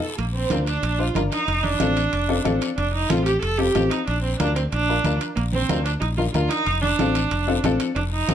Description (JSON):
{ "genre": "latin, cumbia", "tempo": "185 BPM", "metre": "4/4", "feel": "straight", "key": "Bb major", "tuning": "A4 = 440 Hz", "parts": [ { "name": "bright viola", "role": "second line", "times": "0.0-8.3 s", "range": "Bb3 to A4", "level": "-24 LUFS", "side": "right 3 dB", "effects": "none" }, { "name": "fingered electric bass", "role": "bass", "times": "0.2-8.3 s", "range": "F1 to D2", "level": "-24 LUFS", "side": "equal", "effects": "none" }, { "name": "congas", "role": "percussion", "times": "0.2-8.3 s", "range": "none", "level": "-29 LUFS", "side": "right 3 dB", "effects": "none" }, { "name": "guiro", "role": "percussion", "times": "0.2-8.3 s", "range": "none", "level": "-36 LUFS", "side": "left 6 dB", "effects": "none" }, { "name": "timbales", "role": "percussion", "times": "0.2-8.3 s", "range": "none", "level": "-35 LUFS", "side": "right 6 dB", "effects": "none" }, { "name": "warm upright piano", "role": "accompaniment", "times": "0.5-8.3 s", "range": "C4 to C5", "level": "-25 LUFS", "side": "left 4 dB", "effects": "none" } ], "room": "moderate studio reverb, RT60 0.7 s", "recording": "dark, warm production", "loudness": "-20 LUFS", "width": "side -9 dB against mid", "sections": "0.2-8.3 A section", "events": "drum fill 0.0; band accent 0.0; viola solo 0.2-8.3", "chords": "0.2 Bb; 1.5 F; 4.1 Bb; 6.7 F7" }